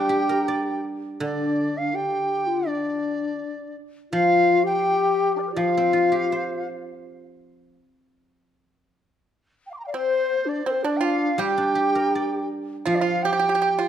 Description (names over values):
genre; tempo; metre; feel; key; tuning
chinese traditional, Chinese chamber ensemble; 82 BPM; 2/4; straight; G yu mode; A4 = 440 Hz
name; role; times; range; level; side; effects
large dizi; melody; 0.0-6.7, 9.7-13.9 s; D4 to D6; -24 LUFS; right 2 dB; none
low xiao; second line; 0.0-6.6, 9.9-13.9 s; D4 to D5; -24 LUFS; left 5 dB; none
pipa; second line; 0.0-0.8, 9.9-13.9 s; C4 to G4; -28 LUFS; right 6 dB; none
guzheng; accompaniment; 0.0-7.8, 11.4-13.9 s; D3 to D5; -27 LUFS; right 2 dB; none
room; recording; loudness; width
moderate recital hall reverb, RT60 1.6 s; dark, warm production; -20 LUFS; side -9 dB against mid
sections
0.0-1.2 A section; 1.2-12.9 B section; 12.9-13.9 A section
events
none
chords
none